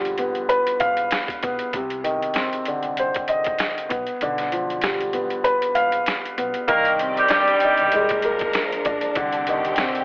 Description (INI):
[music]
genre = hip hop, boom-bap hip-hop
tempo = 97 BPM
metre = 4/4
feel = swing 55% on 16ths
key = C minor from 6.7 s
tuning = A4 = 440 Hz
[part]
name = dark upright piano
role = accompaniment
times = 0.0-10.0 s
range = C3 to F5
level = -21 LUFS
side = equal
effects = none
[part]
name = upright bass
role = bass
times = 0.0-10.0 s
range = Bb1 to C2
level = -41 LUFS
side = equal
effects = none
[part]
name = boom bap sampler-style drum kit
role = drums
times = 0.1-10.0 s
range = hi-hat, kick drum, snare drum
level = -26 LUFS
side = equal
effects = none
[part]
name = warm studio string section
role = sustained chords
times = 6.7-10.0 s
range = C3 to D5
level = -27 LUFS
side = equal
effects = none
[part]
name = clear horn section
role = stabs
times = 6.7-8.2 s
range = G3 to Bb4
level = -19 LUFS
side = equal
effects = digital delay
[sound]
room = moderate plate reverb, RT60 2.6 s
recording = vinyl crackle, telephone sound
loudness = -19 LUFS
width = side -25 dB against mid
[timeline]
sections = 0.0-6.7 A section; 6.7-10.0 B section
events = kick muted 4.2-6.7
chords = 0.0 G7/B; 1.7 Cmadd9; 3.9 G7/B; 6.7 Cmadd9; 7.9 Bb7/C; 9.2 Cmadd9